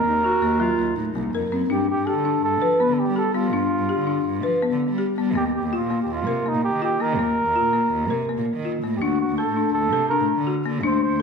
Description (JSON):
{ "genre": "contemporary instrumental, chamber music in an uneven meter", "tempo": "164 BPM", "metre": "5/4", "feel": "straight", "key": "unclear", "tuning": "A4 = 439 Hz", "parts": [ { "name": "mellow flugelhorn", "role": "melody", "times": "0.0-11.2 s", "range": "Eb4 to C5", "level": "-24 LUFS", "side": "right 2 dB", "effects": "none" }, { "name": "folk marimba with medium hard mallets", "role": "arpeggios", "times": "0.0-11.2 s", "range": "Gb3 to B4", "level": "-23 LUFS", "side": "left 4 dB", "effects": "none" }, { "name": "mellow clarinet", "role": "second line", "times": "0.1-1.7 s", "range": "Eb4 to Gb4", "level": "-26 LUFS", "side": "right 3 dB", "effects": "none" }, { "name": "warm cello", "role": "bass", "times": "0.1-11.2 s", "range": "C2 to G3", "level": "-28 LUFS", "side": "right 4 dB", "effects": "none" } ], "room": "wet scoring stage reverb, RT60 1.5 s", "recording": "minimal, uncompressed stereo recording", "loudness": "-20 LUFS", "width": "side -5 dB against mid", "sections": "0.0-1.7 A section; 1.7-11.2 B section", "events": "none", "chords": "0.0 Ebm; 1.7 Gadd9; 5.4 Ebsus2; 9.0 D5", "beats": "0.25 0.61 0.98 1.34 | 1.71 2.07 2.44 2.80 3.17 | 3.53 3.90 4.26 4.63 5.00 | 5.36 5.73 6.09 6.46 6.82 | 7.19 7.55 7.92 8.28 8.65 | 9.01 9.38 9.74 10.11 10.47 | 10.84 11.20" }